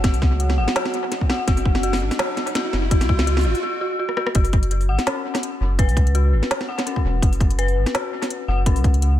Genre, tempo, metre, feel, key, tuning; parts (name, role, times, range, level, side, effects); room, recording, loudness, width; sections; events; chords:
half-time drum and bass; 167 BPM; 4/4; swing 54% on 16ths, half-time; A4 = 439 Hz
deep dark ambient pad; sustained chords; 0.0-3.6 s; F#4 to A5; -38 LUFS; right 2 dB
dark detuned synth bell; arpeggios; 0.0-9.2 s; C#4 to F#5; -26 LUFS; left 4 dB; chorus, tremolo, vintage 12-bit sampler grit, low-pass filter, dub echo
saturated sub bass; bass; 0.0-9.2 s; E1 to C#2; -20 LUFS; equal
electronic kick drum; drums; 0.0-8.9 s; -18 LUFS; equal
organic electronic drum kit; drums; 0.0-9.1 s; hi-hat, rim click, snare drum; -25 LUFS; right 1 dB; overdrive, analog delay
riser; sound effects; 0.2-3.6 s; -30 LUFS; equal
pulsing gated texture; texture; 0.0-3.6 s; F#4; -39 LUFS; right 9 dB
light reverb, digital ambience; echo-heavy mix; -18 LUFS; side -12 dB against mid
0.0-4.4 A section; 4.4-9.2 B section
build-up 0.0-4.4; riser 0.2-3.6; break 3.6-4.4; drum fill 4.1; drop 4.4-9.2
0.0 F#madd9; 4.4 F#5